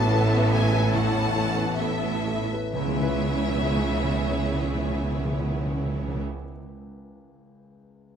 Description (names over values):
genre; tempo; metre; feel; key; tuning
cinematic, emotional film score for orchestra; 61-76 BPM; 4/4; rubato; C# minor; A4 = 440 Hz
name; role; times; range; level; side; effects
warm studio violin section; melody; 0.0-6.2 s; E5 to A5; -32 LUFS; left 6 dB; none
rich studio violin section; second line; 0.0-6.2 s; G#4 to F#5; -33 LUFS; left 1 dB; none
felt-muted upright piano; accompaniment; 0.0-8.2 s; A1 to E5; -32 LUFS; left 2 dB; none
warm symphonic viola section; accompaniment; 0.0-6.2 s; B3 to F#4; -32 LUFS; right 2 dB; none
concert harp; arpeggios; 0.0-6.6 s; A2 to E5; -35 LUFS; left 11 dB; none
dark studio double bass section; bass; 0.0-6.2 s; A1 to C#2; -28 LUFS; right 3 dB; none
rich studio cello section; bass; 0.0-6.2 s; A2 to C#3; -30 LUFS; right 2 dB; none
timpani; percussion; 2.7-6.2 s; C#3; -30 LUFS; right 1 dB; none
room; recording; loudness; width
moderate scoring stage reverb, RT60 1.7 s; close, detailed microphones; -22 LUFS; side -8 dB against mid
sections
0.0-2.7 A section; 2.7-6.3 B section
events
slowing down 0.0-2.7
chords
0.0 Asus2; 2.7 C#m7